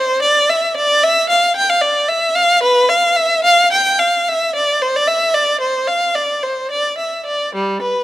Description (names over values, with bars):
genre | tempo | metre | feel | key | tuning
classical, baroque-style suite movement for unaccompanied violin | 74 BPM (dotted quarters) | 12/8 | rubato | unclear | A4 = 440 Hz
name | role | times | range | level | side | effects
warm violin | solo | 0.0-8.0 s | G3 to G5 | -13 LUFS | equal | none
room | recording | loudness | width
moderate recital hall reverb, RT60 1.3 s | close, detailed microphones | -13 LUFS | side -15 dB against mid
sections
0.0-8.0 A section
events
none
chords
none